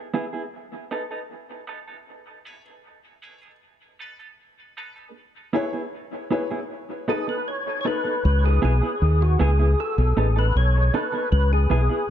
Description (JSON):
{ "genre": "reggae", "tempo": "78 BPM", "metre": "4/4", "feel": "straight", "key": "C# minor", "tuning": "A4 = 438 Hz", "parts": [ { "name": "mellow electric guitar", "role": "accompaniment", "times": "0.1-12.0 s", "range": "B3 to A4", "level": "-29 LUFS", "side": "right 4 dB", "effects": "high-pass filter, dub echo" }, { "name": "dark upright piano", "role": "stabs", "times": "2.5-8.0 s", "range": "D#4 to C#5", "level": "-31 LUFS", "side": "left 5 dB", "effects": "high-pass filter, dub echo" }, { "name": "percussive tonewheel organ", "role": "melody", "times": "7.1-12.1 s", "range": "F#4 to C#5", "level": "-26 LUFS", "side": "left 1 dB", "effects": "overdrive, chorus vibrato, slow rotary speaker, dub echo" }, { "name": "fingered electric bass", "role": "bass", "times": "8.2-11.9 s", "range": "A1 to D#2", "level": "-18 LUFS", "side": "equal", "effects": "none" } ], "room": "light reverb", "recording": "echo-heavy mix", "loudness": "-20 LUFS", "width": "side -11 dB against mid", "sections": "0.0-8.2 A section; 8.2-12.1 B section", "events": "break 0.0-2.1; filter sweep 0.0-5.2", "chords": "0.0 E/B; 0.5 B7; 2.1 C#m7; 3.6 B7; 5.2 C#m7; 6.7 B7; 8.2 C#m7; 9.8 B7; 11.3 C#m7" }